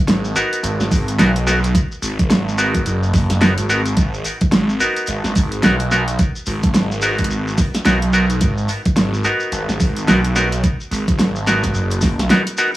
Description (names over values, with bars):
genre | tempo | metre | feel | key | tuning
glitch hop | 108 BPM | 4/4 | swing 60% on 16ths | G# minor | A4 = 440 Hz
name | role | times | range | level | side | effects
phased detuned saw bass | bass | 0.1-12.3 s | F#1 to B1 | -19 LUFS | right 1 dB | phaser, overdrive
pop drum kit | drums | 0.1-12.6 s | hi-hat, snare drum | -18 LUFS | equal | overdrive
shekere | percussion | 0.1-12.8 s | none | -30 LUFS | left 1 dB | none
bright clav | stabs | 0.4-12.7 s | B3 to A#4 | -20 LUFS | equal | sidechain pumping, tape echo
electronic kick drum | drums | 0.9-12.2 s | none | -17 LUFS | equal | overdrive
room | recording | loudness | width
little or no reverb | dry, gritty hardware recording, transformer saturation, vinyl crackle, small room ambience | -15 LUFS | side -15 dB against mid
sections
0.0-12.8 A section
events
none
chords
0.0 G#m7